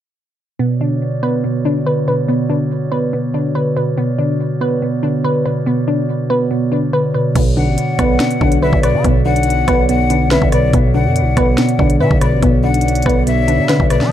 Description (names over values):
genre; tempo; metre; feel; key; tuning
hip hop, drill; 142 BPM; 4/4; half-time; B minor; A4 = 439 Hz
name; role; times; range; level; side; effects
muted felt-like synth keys; accompaniment; 0.6-14.1 s; B2 to B3; -17 LUFS; right 1 dB; chorus, low-pass filter
glass harmonica; sustained chords; 0.6-14.1 s; B3 to D5; -25 LUFS; right 2 dB; none
glassy wavetable pluck; arpeggios; 0.6-14.1 s; B3 to B4; -19 LUFS; equal; chorus, low-pass filter, ping-pong delay
growling 808-style bass; bass; 7.4-14.1 s; A1 to F#3; -19 LUFS; equal; none
drill drum kit; drums; 7.4-14.1 s; crash cymbal, hi-hat, kick drum, rim click, snare drum; -17 LUFS; equal; none
breathy bright jazz flute; second line; 7.6-14.1 s; D5 to F#5; -20 LUFS; left 8 dB; ping-pong delay
room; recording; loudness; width
light reverb; dark, warm production; -13 LUFS; side -11 dB against mid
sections
0.6-7.4 A section; 7.4-14.1 B section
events
none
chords
0.6 Bmadd9